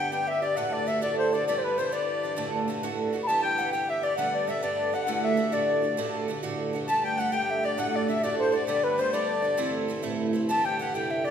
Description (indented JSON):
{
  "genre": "celtic folk",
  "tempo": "133 BPM (dotted quarters)",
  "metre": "12/8",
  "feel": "straight",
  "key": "G major",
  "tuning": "A4 = 441 Hz",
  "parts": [
    { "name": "bright baroque flute", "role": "melody", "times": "0.0-11.3 s", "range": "B4 to B5", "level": "-27 LUFS", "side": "left 2 dB", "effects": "none" },
    { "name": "accordion", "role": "second line", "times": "0.0-11.3 s", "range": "B4 to A5", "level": "-31 LUFS", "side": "left 2 dB", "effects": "none" },
    { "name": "picked twelve-string acoustic guitar", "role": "accompaniment", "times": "0.0-11.3 s", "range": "D2 to G4", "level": "-29 LUFS", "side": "right 4 dB", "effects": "none" },
    { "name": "pedal harmonium", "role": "drone", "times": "0.0-11.3 s", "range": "G2 to D3", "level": "-38 LUFS", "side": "left 2 dB", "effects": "none" }
  ],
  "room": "wet recital hall reverb, RT60 1.6 s",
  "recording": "minimal, uncompressed stereo recording",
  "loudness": "-24 LUFS",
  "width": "side -8 dB against mid",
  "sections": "0.0-11.3 A section",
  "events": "none",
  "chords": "0.0 G; 0.6 D; 1.5 G6; 2.4 D; 3.3 Em; 4.2 Gadd9; 5.1 D; 6.9 Gsus2; 7.8 D; 8.7 Gadd9; 9.6 C6",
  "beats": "0.12 0.57 1.02 | 1.47 1.92 2.37 2.82 | 3.27 3.72 4.17 4.62 | 5.07 5.52 5.97 6.42 | 6.88 7.33 7.78 8.23 | 8.68 9.13 9.58 10.03 | 10.49 10.94"
}